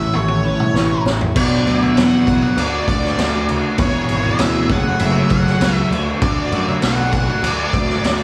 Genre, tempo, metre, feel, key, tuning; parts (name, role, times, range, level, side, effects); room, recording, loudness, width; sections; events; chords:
psychedelic rock; 99 BPM; 4/4; straight; D lydian; A4 = 440 Hz
octave-fuzz lead guitar; melody; 0.0-8.2 s; C#5 to F#5; -25 LUFS; equal; wah, distortion, slapback echo
overdriven combo organ; sustained chords; 0.0-8.2 s; F#3 to D5; -33 LUFS; equal
twelve-string electric guitar; riff; 0.0-8.2 s; E2 to G#4; -22 LUFS; equal; rotary speaker
fuzz picked electric bass; bass; 0.0-8.2 s; E1 to F#2; -24 LUFS; equal; overdrive
vintage drum kit; drums; 0.1-8.2 s; crash cymbal, kick drum, snare drum, toms; -22 LUFS; equal
congas; percussion; 0.4-8.2 s; -34 LUFS; equal
small room reverb; small room ambience; -17 LUFS; mono
0.0-1.4 A section; 1.4-8.2 B section
drum fill 0.1-1.4
0.0 A; 1.4 Bm; 2.6 D; 3.8 E6; 4.7 F#madd9; 5.9 D